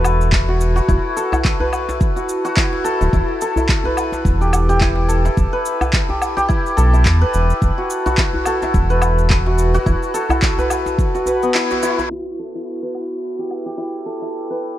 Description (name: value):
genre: organic downtempo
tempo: 107 BPM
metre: 4/4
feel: swing 57% on 16ths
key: E minor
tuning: A4 = 440 Hz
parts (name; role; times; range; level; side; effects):
- santur; arpeggios; 0.0-14.8 s; B3 to B4; -19 LUFS; left 1 dB; low-pass filter, digital delay
- round analog bass; bass; 0.0-10.0 s; D1 to E2; -15 LUFS; equal; none
- electronic woodblock, cabasa and handclaps; drums; 0.0-13.6 s; none; -24 LUFS; equal; none
- electronic kick drum; drums; 0.3-11.1 s; none; -18 LUFS; equal; none
- djembe; percussion; 0.5-12.1 s; none; -25 LUFS; equal; none
room: light reverb, studio ambience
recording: dark, warm production, low-pass filter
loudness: -15 LUFS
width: side -13 dB against mid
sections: 0.0-12.1 A section; 12.1-14.8 B section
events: band accent 11.5; filter sweep on santur 12.1-14.8; filter sweep 12.1-14.8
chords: 0.0 B7(no3)/E; 3.1 Em